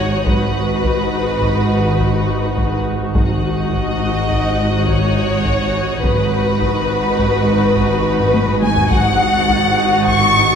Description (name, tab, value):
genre	cinematic, suspense film score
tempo	104 BPM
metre	5/4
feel	straight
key	G# minor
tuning	A4 = 440 Hz
part	rich symphonic violin section	melody	0.0-10.6 s	B4 to C#6	-20 LUFS	left 2 dB	none
part	rich studio violin section	second line	0.0-10.6 s	B4 to C#6	-21 LUFS	left 2 dB	none
part	rich symphonic viola section	accompaniment	0.0-10.6 s	D#4 to F#4	-22 LUFS	equal	none
part	rich symphonic cello section	bass	0.0-10.6 s	G#2	-22 LUFS	right 2 dB	none
part	rich symphonic double bass section	bass	0.0-10.6 s	G#1	-23 LUFS	right 3 dB	none
part	organ-like drone	drone	0.0-10.6 s	G#1	-23 LUFS	left 2 dB	ensemble chorus, built-in reverb
part	rich symphonic violin section	texture	0.0-10.6 s	D#6 to A#6	-30 LUFS	left 3 dB	none
part	solo taiko drums	drums	0.3-10.6 s	none	-22 LUFS	equal	none
room	wet scoring stage reverb, RT60 1.9 s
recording	heard from further back in the room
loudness	-14 LUFS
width	side -7 dB against mid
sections	0.0-10.6 A section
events	drum fill 8.2-8.9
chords	0.0 G#m7